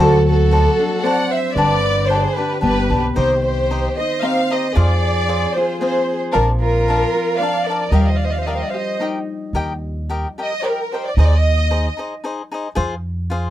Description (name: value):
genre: mexican folk, mariachi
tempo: 112 BPM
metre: 3/4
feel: swing 54% on 8ths, rubato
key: Eb major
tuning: A4 = 439 Hz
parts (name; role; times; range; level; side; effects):
- rich studio violin section; melody; 0.0-12.0 s; A4 to F#5; -20 LUFS; right 1 dB; none
- rich violin; second line; 0.0-9.0 s; F4 to D5; -26 LUFS; right 5 dB; none
- cavaquinho; accompaniment; 0.0-13.5 s; D4 to G5; -22 LUFS; left 2 dB; none
- Celtic harp; arpeggios; 0.0-11.7 s; D3 to G4; -24 LUFS; left 4 dB; none
- upright bass; bass; 0.0-13.5 s; G1 to F2; -17 LUFS; right 1 dB; none
room: little or no reverb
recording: dry, close 1970s-style studio recording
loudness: -16 LUFS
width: side -13 dB against mid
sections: 0.0-9.5 A section; 9.5-13.5 B section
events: none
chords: 0.0 D7; 1.6 G; 3.2 Cm; 4.8 Fm; 6.3 Bb; 7.9 Eb; 11.2 Ab/Eb; 12.8 Fm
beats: | 0.01 0.53 1.05 | 1.57 2.09 2.63 | 3.16 3.70 4.23 | 4.76 5.28 5.81 | 6.33 6.86 7.38 | 7.91 8.45 8.99 | 9.54 10.08 10.62 | 11.16 11.70 12.23 | 12.77 13.31